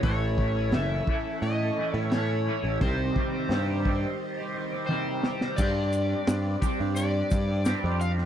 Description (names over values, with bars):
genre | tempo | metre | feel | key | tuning
psychedelic rock | 86 BPM | 4/4 | straight | unclear | A4 = 440 Hz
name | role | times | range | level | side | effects
overdriven slide guitar | melody | 0.0-8.1 s | C5 to F5 | -33 LUFS | left 3 dB | slapback echo
clear studio string section | sustained chords | 0.0-8.3 s | E4 to Eb5 | -41 LUFS | right 4 dB | none
twangy electric guitar | riff | 0.0-8.3 s | A2 to G4 | -31 LUFS | right 1 dB | rotary speaker, double-tracked left and right
fuzz picked electric bass | bass | 0.0-8.3 s | F#1 to A2 | -27 LUFS | equal | overdrive
crunchy breakbeat drum kit | drums | 0.0-8.3 s | crash cymbal, hi-hat, kick drum, ride cymbal, snare drum, toms | -29 LUFS | equal | none
tube shaker | percussion | 5.6-8.2 s | none | -44 LUFS | left 12 dB | none
room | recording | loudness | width
little or no reverb | dry, close 1970s-style studio recording | -24 LUFS | side -10 dB against mid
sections
0.0-5.6 A section; 5.6-8.3 B section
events
break 4.2-5.6; drum fill 4.9-5.6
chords
0.0 A; 2.8 Cm; 5.6 Gsus4